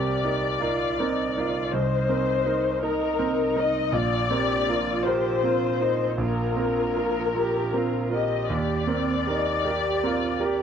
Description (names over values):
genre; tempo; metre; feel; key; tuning
neoclassical piano and strings; 53 BPM (dotted quarters); 6/8; rubato; C minor; A4 = 440 Hz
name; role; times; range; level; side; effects
muted chamber violin section; melody; 0.0-10.6 s; Bb4 to Eb5; -26 LUFS; left 7 dB; none
muted cello; second line; 0.0-10.6 s; C4 to G4; -30 LUFS; right 4 dB; none
bright concert grand piano; accompaniment; 0.0-10.6 s; Bb1 to Bb4; -26 LUFS; right 4 dB; none
room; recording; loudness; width
light reverb; dry, close 1970s-style studio recording; -22 LUFS; side -8 dB against mid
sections
0.0-10.6 A section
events
none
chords
0.0 Cm7; 3.9 Bbsus2; 8.5 Eb6